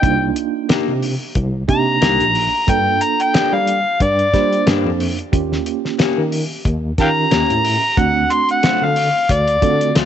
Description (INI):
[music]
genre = straight-eighth soul blues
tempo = 91 BPM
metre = 4/4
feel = swing 56% on 16ths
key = G minor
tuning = A4 = 440 Hz
[part]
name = overdriven harmonica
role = melody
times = 0.0-9.9 s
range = D5 to C6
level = -16 LUFS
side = left 1 dB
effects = none
[part]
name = mellow reed electric piano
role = accompaniment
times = 0.0-10.1 s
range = A3 to C5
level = -22 LUFS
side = right 13 dB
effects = fast tremolo
[part]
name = overdriven tine electric piano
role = bass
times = 0.0-10.1 s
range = Bb1 to G3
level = -20 LUFS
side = equal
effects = fast tremolo
[part]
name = cloth-damped thuddy drum kit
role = drums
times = 0.0-10.1 s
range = hi-hat, kick drum, snare drum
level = -19 LUFS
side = left 1 dB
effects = none
[part]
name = electric guitar through a small old amp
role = stabs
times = 0.7-10.1 s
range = F3 to G4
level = -24 LUFS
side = left 11 dB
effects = none
[sound]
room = light reverb, small room ambience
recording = 1960s-style stereo with parts hard left and right, nothing above 8.0 kHz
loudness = -14 LUFS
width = side -9 dB against mid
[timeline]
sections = 0.0-10.1 A section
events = harmonica solo 0.0-10.1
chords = 0.0 Cm7; 2.7 Gm7; 5.3 Eb7; 8.0 D7#9